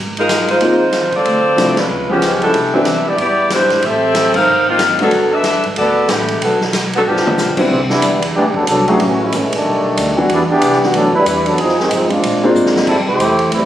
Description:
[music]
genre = jazz, big band swing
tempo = 186 BPM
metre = 4/4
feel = swing 61% on 8ths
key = unclear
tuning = A4 = 441 Hz
[part]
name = upright bass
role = bass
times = 0.0-13.7 s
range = G1 to Bb2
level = -25 LUFS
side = right 1 dB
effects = none
[part]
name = mellow saxophone section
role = melody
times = 0.2-7.6 s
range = D3 to F5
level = -13 LUFS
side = equal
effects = none
[part]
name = swinging big-band drum kit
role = drums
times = 0.2-13.6 s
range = crash cymbal, hi-hat, kick drum, ride cymbal, snare drum, toms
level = -21 LUFS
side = equal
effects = none
[part]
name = warm concert grand piano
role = accompaniment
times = 0.6-2.9, 5.0-5.1, 7.6-12.9 s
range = E3 to Ab4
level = -15 LUFS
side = left 1 dB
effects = none
[part]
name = bright trombone section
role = second line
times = 7.7-13.7 s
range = D3 to C5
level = -13 LUFS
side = equal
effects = none
[sound]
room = moderate club reverb, RT60 0.7 s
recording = recorded on a phone in the room, studio reverb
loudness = -12 LUFS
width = side -12 dB against mid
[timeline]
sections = 0.0-7.7 A section; 7.7-13.7 B section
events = band accent 1.7, 4.3; drum fill 7.1-7.4, 12.6-12.9; trombone section solo 7.7-13.7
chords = 0.0 Ab6; 1.3 Dm9; 1.9 C#7#11; 2.5 Cmaj9; 3.8 Am7; 4.5 Ab13; 5.1 Gmaj9; 7.1 G7; 7.7 Cmaj9; 9.0 F#m9; 9.6 B7alt; 10.3 Em7; 11.6 Fm7; 12.2 Bb9; 12.9 C6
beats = 0.29 0.61 0.93 | 1.25 1.58 1.90 2.22 | 2.54 2.87 3.19 3.51 | 3.83 4.16 4.48 4.80 | 5.12 5.45 5.77 6.09 | 6.42 6.74 7.06 7.39 | 7.71 8.03 8.36 8.68 | 9.00 9.32 9.65 9.97 | 10.29 10.62 10.94 11.26 | 11.58 11.90 12.23 12.55 | 12.87 13.20 13.52

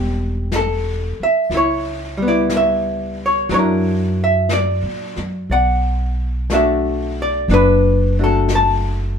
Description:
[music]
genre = jazz ballad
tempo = 60 BPM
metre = 4/4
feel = swing 69% on 8ths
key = unclear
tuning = A4 = 440 Hz
[part]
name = archtop guitar, miked and amplified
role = accompaniment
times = 0.0-9.2 s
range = F#3 to A5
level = -17 LUFS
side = left 1 dB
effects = none
[part]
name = upright bass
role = bass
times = 0.0-9.2 s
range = E1 to A#2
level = -20 LUFS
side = equal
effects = none
[part]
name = jazz brush drum kit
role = drums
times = 0.5-9.2 s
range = brushed snare drum, hi-hat, snare drum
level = -29 LUFS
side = left 2 dB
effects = none
[sound]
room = moderate studio reverb, RT60 0.6 s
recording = band playing live in one room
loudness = -15 LUFS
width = side -7 dB against mid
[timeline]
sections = 0.0-9.2 A section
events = none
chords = 0.0 Am7; 1.5 C#m7b5; 3.5 F#7b13; 5.5 Bm7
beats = 0.51 | 1.50 2.50 3.49 4.49 | 5.49 6.49 7.49 8.48

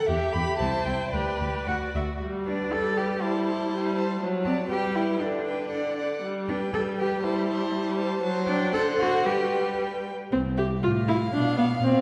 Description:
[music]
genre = quick classical-period movement for string quartet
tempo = 110-124 BPM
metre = 2/4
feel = rubato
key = G major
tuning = A4 = 440 Hz
[part]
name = warm violin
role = melody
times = 0.0-11.7 s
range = D5 to B5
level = -38 LUFS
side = equal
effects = none
[part]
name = warm violin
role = second line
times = 0.0-12.0 s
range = E4 to F5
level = -34 LUFS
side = equal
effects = none
[part]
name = warm viola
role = accompaniment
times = 0.0-12.0 s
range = D3 to F#5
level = -30 LUFS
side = equal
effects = none
[part]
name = rich cello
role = bass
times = 0.1-12.0 s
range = C2 to A4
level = -31 LUFS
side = equal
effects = none
[sound]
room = wet concert hall reverb, RT60 2.0 s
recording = heard from further back in the room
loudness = -27 LUFS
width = mono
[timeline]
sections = 0.0-2.2 A section; 2.2-10.3 B section; 10.3-12.0 A section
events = none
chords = 0.1 Em; 0.6 C; 1.1 G; 1.7 D; 2.2 G; 3.2 Am7/G; 4.2 D7/F#; 4.7 G; 5.2 G/D; 6.2 G; 7.2 Am7/G; 8.2 D7/F#; 8.7 D7; 9.3 G; 10.3 C5; 10.8 F/A; 11.3 Bdim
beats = | 0.09 0.61 | 1.14 1.68 | 2.21 2.72 | 3.22 3.72 | 4.21 4.70 | 5.21 5.72 | 6.23 6.74 | 7.25 7.74 | 8.24 8.74 | 9.27 9.80 | 10.32 10.84 | 11.34 11.83

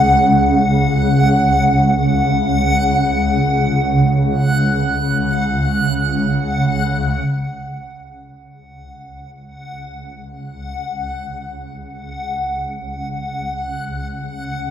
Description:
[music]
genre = dark ambient drone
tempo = free time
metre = none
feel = none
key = unclear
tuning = A4 = 440 Hz
[part]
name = swarming drone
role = drone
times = 0.0-14.7 s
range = C#2 to C#3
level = -18 LUFS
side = equal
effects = built-in reverb
[part]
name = backwards swelling texture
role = texture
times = 0.0-14.7 s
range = F#5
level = -20 LUFS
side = equal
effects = built-in reverb
[sound]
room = wet echo chamber reverb, RT60 2.1 s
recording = none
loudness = -15 LUFS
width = side -9 dB against mid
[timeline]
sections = 0.0-7.3 A section; 7.3-14.7 B section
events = none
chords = 0.0 C#sus4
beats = free time

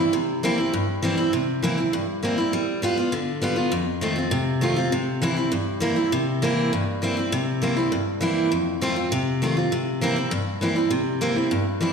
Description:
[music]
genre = rock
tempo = 200 BPM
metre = 4/4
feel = straight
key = C mixolydian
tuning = A4 = 440 Hz
[part]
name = picked steel-string acoustic guitar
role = solo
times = 0.0-11.9 s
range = F2 to F4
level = -21 LUFS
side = equal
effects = slapback echo
[sound]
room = moderate club reverb, RT60 0.5 s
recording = live gig heard through the venue's PA, recital hall reverb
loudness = -21 LUFS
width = side -6 dB against mid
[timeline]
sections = 0.0-7.3 A section; 7.3-11.9 B section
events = none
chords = 0.0 C7; 2.5 G7; 3.7 F7; 4.9 C7; 8.5 F7; 9.7 C7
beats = | 0.14 0.43 0.73 1.03 | 1.33 1.63 1.93 2.23 | 2.53 2.83 3.12 3.42 | 3.72 4.02 4.32 4.62 | 4.92 5.22 5.52 5.82 | 6.12 6.42 6.72 7.02 | 7.32 7.62 7.92 8.22 | 8.52 8.82 9.12 9.42 | 9.72 10.02 10.32 10.62 | 10.92 11.22 11.52 11.82

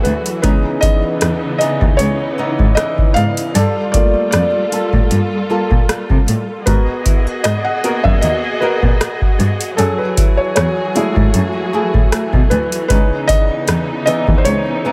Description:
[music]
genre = contemporary R&B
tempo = 77 BPM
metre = 4/4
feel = swing 54% on 16ths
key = unclear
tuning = A4 = 442 Hz
[part]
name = felt-muted upright piano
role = accompaniment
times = 0.0-14.9 s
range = E3 to F#5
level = -21 LUFS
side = equal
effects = none
[part]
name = dark studio string section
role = sustained chords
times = 0.0-14.9 s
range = C#3 to D#5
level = -25 LUFS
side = equal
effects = sidechain pumping
[part]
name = flamenco guitar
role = arpeggios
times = 0.0-14.9 s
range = C#3 to A#4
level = -25 LUFS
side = equal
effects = digital delay
[part]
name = booming analog drum machine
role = drums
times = 0.0-14.7 s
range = hi-hat, kick drum, rim click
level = -17 LUFS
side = equal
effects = overdrive
[part]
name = warm cello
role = bass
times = 0.1-14.5 s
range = C#2 to B#2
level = -20 LUFS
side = equal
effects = none
[sound]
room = small room ambience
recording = none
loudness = -15 LUFS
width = mono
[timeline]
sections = 0.0-14.9 A section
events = felt piano solo 0.0-14.9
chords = 0.4 C#m9; 3.5 Gm9; 6.7 G#m9; 9.8 F#m9; 12.9 C#m9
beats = | 0.43 1.21 1.99 2.77 | 3.55 4.33 5.11 5.89 | 6.67 7.45 8.22 9.01 | 9.78 10.56 11.34 12.12 | 12.90 13.68 14.46

